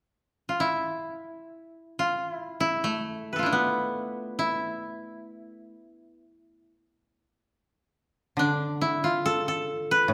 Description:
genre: japanese traditional.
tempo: free time.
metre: none.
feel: none.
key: E in sen.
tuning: A4 = 439 Hz.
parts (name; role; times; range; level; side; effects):
koto; melody; 0.5-10.1 s; A3 to B4; -28 LUFS; equal; none.
koto; accompaniment; 8.4-10.1 s; A2 to D3; -32 LUFS; equal; none.
room: wet recital hall reverb, RT60 1.4 s.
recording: none.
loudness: -28 LUFS.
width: mono.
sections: 0.0-8.4 A section; 8.4-10.1 B section.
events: none.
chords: none.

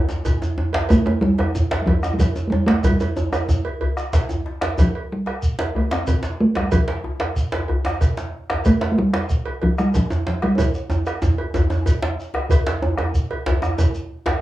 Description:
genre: west african traditional, West African drum ensemble.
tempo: 124 BPM (dotted quarters).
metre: 12/8.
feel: straight.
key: F major pentatonic.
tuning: A4 = 440 Hz.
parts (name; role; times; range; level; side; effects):
djembe; percussion; 0.1-14.4 s; none; -25 LUFS; left 2 dB; none.
djembe; percussion; 0.1-14.4 s; none; -23 LUFS; right 1 dB; none.
shekere; percussion; 0.1-14.0 s; none; -26 LUFS; left 1 dB; none.
cowbell; percussion; 0.2-14.4 s; none; -29 LUFS; right 5 dB; none.
bombo; percussion; 0.3-14.4 s; none; -24 LUFS; equal; none.
talking drum; melody; 0.9-12.2 s; F3 to C4; -20 LUFS; right 1 dB; none.
room: moderate studio reverb, RT60 0.5 s.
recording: worn, warbling old tape, cassette tape, warbly pitch drift, small room ambience.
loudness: -18 LUFS.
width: side -15 dB against mid.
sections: 0.0-12.5 A section; 12.5-14.4 B section.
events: drum fill 4.3-4.8, 10.6-12.5.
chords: none.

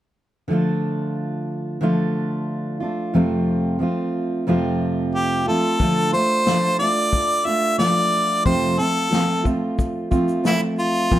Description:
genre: acoustic pop.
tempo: 90 BPM.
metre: 4/4.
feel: straight.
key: D minor.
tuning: A4 = 442 Hz.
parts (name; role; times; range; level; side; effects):
fingerpicked steel-string acoustic guitar; accompaniment; 0.5-11.2 s; F2 to F4; -20 LUFS; right 1 dB; none.
bright harmonica; melody; 5.2-11.2 s; E4 to E5; -20 LUFS; equal; none.
unplugged drum kit; drums; 5.8-11.2 s; kick drum, shaker, snare drum; -23 LUFS; left 2 dB; none.
room: moderate studio reverb, RT60 0.5 s.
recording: none.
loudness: -18 LUFS.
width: side -13 dB against mid.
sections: 0.5-5.8 A section; 5.8-11.2 B section.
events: none.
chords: 0.5 Dm; 3.1 F; 5.8 Dm; 8.5 F.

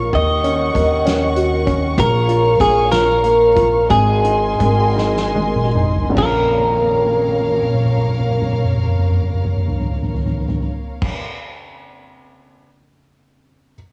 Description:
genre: six-eight pop ballad.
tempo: 47-65 BPM (dotted quarters).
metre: 6/8.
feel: straight.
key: Bb minor.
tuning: A4 = 440 Hz.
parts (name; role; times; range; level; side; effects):
felt-muted upright piano; accompaniment; 0.0-13.8 s; Bb1 to Bb4; -24 LUFS; equal; cassette tape, plate reverb.
warm studio string section; sustained chords; 0.0-11.2 s; Bb3 to Db6; -26 LUFS; equal; cassette tape, plate reverb.
upright bass; bass; 0.0-11.1 s; Ab1 to Eb2; -24 LUFS; equal; none.
soft-mallet drum kit; drums; 0.1-12.7 s; crash cymbal, hi-hat, kick drum, snare drum, toms; -23 LUFS; equal; cassette tape.
direct-recorded clean electric guitar; melody; 0.2-11.2 s; Ab4 to Eb5; -19 LUFS; equal; analog chorus, cassette tape, plate reverb.
room: light reverb.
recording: home recording on cassette, small room ambience.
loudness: -16 LUFS.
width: mono.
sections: 0.0-6.2 A section; 6.2-11.2 B section.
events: slowing down 2.0-6.2; drum fill 5.0-6.2, 6.6-11.0.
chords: 0.1 Ebm7; 2.0 Bbm; 3.9 Abadd9; 6.2 Bbm.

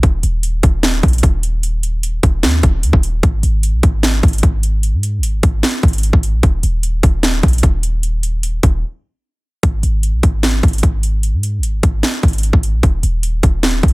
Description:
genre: hip hop, trap.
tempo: 150 BPM.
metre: 4/4.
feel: half-time.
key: unclear.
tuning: A4 = 440 Hz.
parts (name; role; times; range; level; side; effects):
clean 808-style bass; bass; 0.0-13.9 s; D#1 to G#2; -16 LUFS; equal; none.
trap drum kit; drums; 0.0-13.9 s; hi-hat, kick drum, snare drum; -14 LUFS; equal; overdrive.
room: little or no reverb.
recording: dense, heavily limited modern master.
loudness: -13 LUFS.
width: side -23 dB against mid.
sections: 0.0-9.6 A section; 9.6-13.9 B section.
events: break 8.8-9.6.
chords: none.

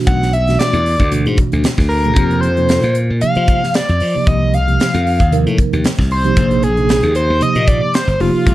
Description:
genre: electric jazz fusion.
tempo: 114 BPM.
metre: 4/4.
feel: swing 54% on 16ths.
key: F mixolydian.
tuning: A4 = 440 Hz.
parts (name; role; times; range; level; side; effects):
mellow tine electric piano; accompaniment; 0.0-8.5 s; B2 to Bb4; -19 LUFS; right 2 dB; medium stereo tremolo, phaser.
overdriven synth lead; melody; 0.1-8.5 s; F4 to F#5; -17 LUFS; equal; distortion, slapback echo.
glassy slap bass; bass; 0.1-8.5 s; F1 to F3; -16 LUFS; equal; none.
crisp fusion drum kit; drums; 0.1-8.5 s; hi-hat, kick drum, snare drum; -17 LUFS; equal; none.
room: light reverb, small room reverb.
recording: none.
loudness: -12 LUFS.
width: side -15 dB against mid.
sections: 0.0-8.5 A section.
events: none.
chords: 0.0 E9sus4; 2.2 F9sus4; 6.4 Bb9sus4.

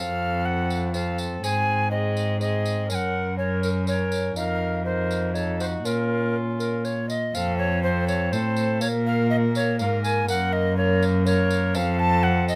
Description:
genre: classical, renaissance-style consort dance.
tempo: 123 BPM.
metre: 3/4.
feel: straight.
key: unclear.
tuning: A4 = 441 Hz.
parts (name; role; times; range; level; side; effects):
alto recorder; melody; 0.0-12.6 s; Bb4 to A5; -29 LUFS; equal; none.
rich viola; second line; 0.0-12.6 s; F4 to Bb4; -34 LUFS; equal; none.
mellow bassoon; accompaniment; 0.0-12.6 s; Bb3 to Eb4; -33 LUFS; equal; none.
rich cello; bass; 0.0-12.6 s; F2 to Bb2; -27 LUFS; equal; none.
tambourine; percussion; 0.7-12.6 s; none; -39 LUFS; equal; none.
room: light reverb.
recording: close, detailed microphones.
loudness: -24 LUFS.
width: mono.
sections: 0.0-7.3 A section; 7.3-12.6 A section.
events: none.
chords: 0.0 F; 1.4 Ab; 2.9 Gb; 4.4 F7sus4; 5.8 Bbm; 7.3 F; 8.8 Db6 (rootless); 10.3 Gb; 11.8 F.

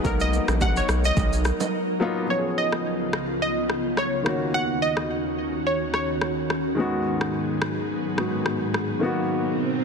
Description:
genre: afrobeats.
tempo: 107 BPM.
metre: 4/4.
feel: swing 55% on 16ths.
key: unclear.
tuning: A4 = 439 Hz.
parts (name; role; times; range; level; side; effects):
glassy wavetable pluck; melody; 0.0-6.5 s; A#4 to F#5; -27 LUFS; right 1 dB; chorus, tape echo.
warm baby grand piano; accompaniment; 0.0-9.8 s; Eb3 to A#4; -28 LUFS; left 2 dB; none.
ethereal airy pad; sustained chords; 0.0-9.8 s; Db2 to A#4; -28 LUFS; right 1 dB; ensemble chorus, built-in reverb.
round analog bass; bass; 0.0-1.5 s; A#1 to B1; -24 LUFS; equal; none.
afro-pop drum kit; drums; 0.0-8.9 s; kick drum, rim click, shaker; -29 LUFS; equal; soft clipping on snare.
congas and bongos; percussion; 0.1-1.7 s; none; -32 LUFS; right 9 dB; none.
swell; sound effects; 9.4-9.8 s; none; -29 LUFS; right 7 dB; none.
room: moderate lush hall reverb, RT60 2.3 s.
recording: dense, heavily limited modern master.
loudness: -22 LUFS.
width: side -5 dB against mid.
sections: 0.0-2.3 A section; 2.3-9.8 B section.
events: break 1.7-2.3; swell 9.4-9.8.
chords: 0.0 Bmaj7; 2.3 Db7; 4.3 Ebm7; 6.8 Abm7; 9.0 Bmaj7.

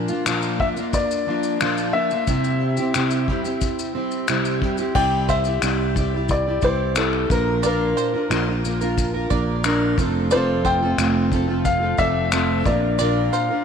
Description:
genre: acoustic pop.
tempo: 90 BPM.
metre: 4/4.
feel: straight.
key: unclear.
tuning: A4 = 440 Hz.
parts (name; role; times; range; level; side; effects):
fingerpicked plugged-in steel-string acoustic guitar; accompaniment; 0.0-13.6 s; F2 to D5; -22 LUFS; right 1 dB; double-tracked left and right.
vintage brush drum kit; drums; 0.1-13.5 s; crash cymbal, finger snaps, kick drum, shaker; -26 LUFS; left 2 dB; none.
warm upright piano; melody; 0.6-13.6 s; A4 to G5; -24 LUFS; left 3 dB; none.
bluegrass banjo; arpeggios; 5.0-13.6 s; C5 to D5; -31 LUFS; right 10 dB; tape echo.
fretless electric bass; bass; 5.0-13.3 s; F1 to C2; -24 LUFS; right 1 dB; none.
room: moderate plate reverb, RT60 2.7 s.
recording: 1960s-style stereo.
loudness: -18 LUFS.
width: side -7 dB against mid.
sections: 0.0-5.0 A section; 5.0-13.6 B section.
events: none.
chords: 0.0 Bb; 2.3 C; 5.0 Cadd9; 7.3 Bb; 10.0 F; 12.7 Bb.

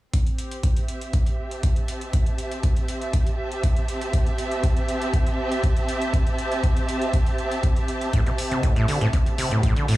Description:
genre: acid house.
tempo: 120 BPM.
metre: 4/4.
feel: straight.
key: unclear.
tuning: A4 = 439 Hz.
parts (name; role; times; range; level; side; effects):
electronic hi-hat; drums; 0.1-10.0 s; none; -36 LUFS; left 1 dB; none.
electronic kick drum; drums; 0.1-9.7 s; none; -22 LUFS; equal; none.
warm symphonic string section; texture; 0.1-10.0 s; C4 to A5; -28 LUFS; right 1 dB; sidechain pumping.
acid bass, saw; riff; 8.1-10.0 s; A2 to D3; -22 LUFS; equal; overdrive, sidechain pumping, analog delay.
room: little or no reverb.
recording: dry, gritty hardware recording, cassette tape, small room reverb.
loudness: -21 LUFS.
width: side -17 dB against mid.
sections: 0.1-10.0 A section.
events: none.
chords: 0.1 Am7.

